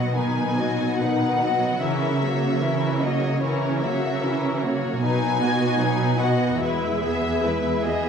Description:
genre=classical, slow romantic movement for symphony orchestra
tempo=68-77 BPM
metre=4/4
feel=rubato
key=B major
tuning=A4 = 439 Hz
part: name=warm studio violin section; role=melody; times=0.0-8.1 s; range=C#5 to G#5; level=-27 LUFS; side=left 4 dB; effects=none
part: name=warm studio violin section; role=second line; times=0.0-8.1 s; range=D#4 to E5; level=-28 LUFS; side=left 3 dB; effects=none
part: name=warm studio viola section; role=accompaniment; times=0.0-8.1 s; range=D#3 to G#4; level=-27 LUFS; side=right 3 dB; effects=none
part: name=concert harp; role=arpeggios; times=0.0-8.1 s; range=E2 to D#5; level=-30 LUFS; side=left 6 dB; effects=none
part: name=warm symphonic cello section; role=bass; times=0.0-8.1 s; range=E2 to C#3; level=-25 LUFS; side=right 4 dB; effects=none
room=wet scoring stage reverb, RT60 2.0 s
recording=dark, warm production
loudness=-20 LUFS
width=side -7 dB against mid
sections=0.0-8.1 A section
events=none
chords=0.0 B; 1.8 F#7/C#; 5.0 B; 6.6 E

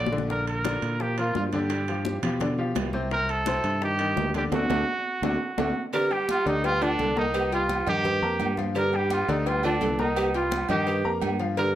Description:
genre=latin, salsa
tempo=170 BPM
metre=4/4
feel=straight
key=G minor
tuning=A4 = 440 Hz
part: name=clear trumpet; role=melody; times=0.0-11.7 s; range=D4 to D5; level=-28 LUFS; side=right 2 dB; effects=plate reverb
part: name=clear baby grand piano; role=accompaniment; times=0.0-11.7 s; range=C3 to Bb5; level=-30 LUFS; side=left 2 dB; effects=none
part: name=fingered electric bass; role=bass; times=0.0-11.8 s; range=Bb1 to B2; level=-30 LUFS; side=equal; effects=none
part: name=bongos and cowbell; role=percussion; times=0.1-11.8 s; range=none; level=-34 LUFS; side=left 5 dB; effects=none
part: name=congas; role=percussion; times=0.1-11.8 s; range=none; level=-37 LUFS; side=left 2 dB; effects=none
part: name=timbales and agogo bells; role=percussion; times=0.5-11.4 s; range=none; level=-33 LUFS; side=right 4 dB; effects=none
part: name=breathy mellow pan flute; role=second line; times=5.9-11.8 s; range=F4 to A4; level=-30 LUFS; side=right 2 dB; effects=none
room=moderate large studio reverb, RT60 0.8 s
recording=none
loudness=-23 LUFS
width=side -12 dB against mid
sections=0.0-5.9 A section; 5.9-11.8 B section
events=drum fill 0.0, 4.5-5.9; band accent 4.5-5.9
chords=0.3 Bb; 1.7 G7; 3.1 Cm; 4.5 D; 5.9 Gm7; 7.3 Cm7; 8.8 Gm7; 10.2 Cm7

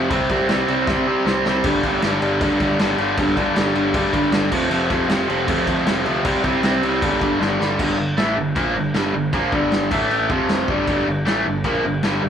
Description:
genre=punk rock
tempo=156 BPM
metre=4/4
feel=straight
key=G minor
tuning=A4 = 440 Hz
part: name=raw garage guitar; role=riff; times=0.0-12.3 s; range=F2 to C4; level=-18 LUFS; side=equal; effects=overdrive
part: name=fuzz picked electric bass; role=bass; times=0.0-12.3 s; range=F1 to C3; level=-28 LUFS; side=equal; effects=overdrive
part: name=loose indie drum kit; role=drums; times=0.1-12.1 s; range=crash cymbal, kick drum, snare drum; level=-23 LUFS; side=equal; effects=none
room=light reverb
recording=band playing live in one room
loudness=-17 LUFS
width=side -8 dB against mid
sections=0.0-7.8 A section; 7.8-12.3 B section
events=drum fill 0.9-1.6, 7.4-7.8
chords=0.1 C5; 1.6 G5; 4.5 F5; 6.3 C5; 7.0 G5; 7.8 Gm; 9.9 A5; 10.3 F5; 10.7 Gm

